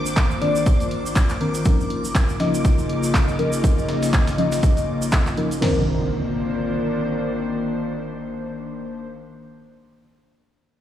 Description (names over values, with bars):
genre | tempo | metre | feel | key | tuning
deep house | 121 BPM | 4/4 | swing 56% on 16ths | unclear | A4 = 440 Hz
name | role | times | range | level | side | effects
airy breathy pad | sustained chords | 0.0-9.1 s | Eb3 to C5 | -27 LUFS | left 2 dB | chorus, vintage 12-bit sampler grit, sidechain pumping
deep mellow chord stab | stabs | 0.0-9.1 s | Eb3 to Eb5 | -25 LUFS | left 1 dB | chorus, phaser, sidechain pumping, dub echo
string machine, violins | texture | 0.0-5.6 s | D6 | -35 LUFS | right 1 dB | ensemble chorus, sidechain pumping
warbly tape-like pad | texture | 0.0-9.3 s | Db3 to Eb5 | -28 LUFS | left 1 dB | chorus, built-in reverb, sidechain pumping
tube shaker | percussion | 0.1-5.6 s | none | -34 LUFS | right 4 dB | none
breakbeat sampler-style drum kit | drums | 0.2-5.6 s | hi-hat, snare drum | -36 LUFS | equal | sidechain pumping on hats, high-pass filter on hats, small room ambience, high-pass filter on snare
electronic handclaps | drums | 0.2-5.4 s | none | -27 LUFS | equal | overdrive, small room ambience
punchy analog drum machine | drums | 0.2-5.8 s | crash cymbal, kick drum, snare drum, toms | -19 LUFS | equal | overdrive, small room ambience
impact | sound effects | 5.6-9.1 s | none | -30 LUFS | equal | none
room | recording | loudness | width
light reverb, digital ambience | played on a big sound system in a bare room, stone room reverb | -19 LUFS | side -11 dB against mid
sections
0.0-5.6 A section; 5.6-9.6 B section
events
none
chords
0.0 Cm9; 1.7 Db69; 5.6 Cm9